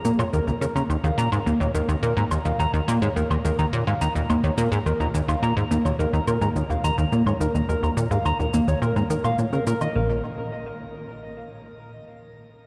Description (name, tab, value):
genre	ambient, sequencer-driven space music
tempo	106 BPM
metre	4/4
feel	straight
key	unclear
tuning	A4 = 439 Hz
part	plucky analog bass	riff	0.0-10.2 s	Bb1 to Eb3	-26 LUFS	equal	tape echo
part	shaker and woodblock	percussion	0.0-9.9 s	none	-38 LUFS	equal	tape echo
part	mellow electric guitar	arpeggios	0.1-10.2 s	Bb3 to Bb5	-28 LUFS	equal	tape echo, shimmer reverb
room	wet cathedral reverb, RT60 5.5 s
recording	in a vast, echoing space, cassette tape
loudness	-23 LUFS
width	mono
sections	0.0-10.0 A section; 10.0-12.2 B section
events	none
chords	0.0 Bbm; 0.9 Eb5; 10.0 N.C.